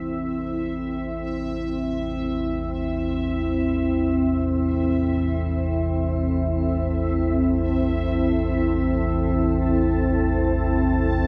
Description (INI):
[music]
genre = dark ambient drone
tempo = free time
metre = none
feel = none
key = A minor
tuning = A4 = 440 Hz
[part]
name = deep dark ambient pad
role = sustained chords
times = 0.0-11.3 s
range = C4 to A4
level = -25 LUFS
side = equal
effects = chorus, built-in reverb, shimmer reverb
[part]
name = deep rumbling drone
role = drone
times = 0.0-11.3 s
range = A1 to E2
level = -28 LUFS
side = equal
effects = built-in reverb, lush chorus
[part]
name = bubbling stepped-filter texture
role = texture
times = 0.0-11.3 s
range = E5 to A5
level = -36 LUFS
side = equal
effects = chorus, built-in reverb, shimmer reverb
[sound]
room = wet cathedral reverb, RT60 5.2 s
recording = none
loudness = -23 LUFS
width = mono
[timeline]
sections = 0.0-11.3 A section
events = fade-in on synth texture 0.0-11.3; filter sweep on synth drone 0.0-11.3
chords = 0.0 A5